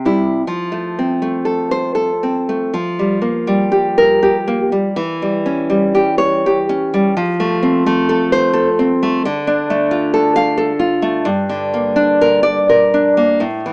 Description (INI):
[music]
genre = romantic piece for solo classical guitar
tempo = 71-91 BPM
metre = 3/4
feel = rubato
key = F major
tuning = A4 = 440 Hz
[part]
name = nylon-string guitar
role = solo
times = 0.0-13.7 s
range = G2 to F5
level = -16 LUFS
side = equal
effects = none
[sound]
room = light reverb, small room ambience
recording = rough home demo mix, small speaker sound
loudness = -16 LUFS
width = mono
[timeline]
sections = 0.5-13.7 A section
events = none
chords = 0.5 F; 2.7 Gm7/F; 5.0 Em6; 7.2 F; 9.2 Dm; 11.3 Gm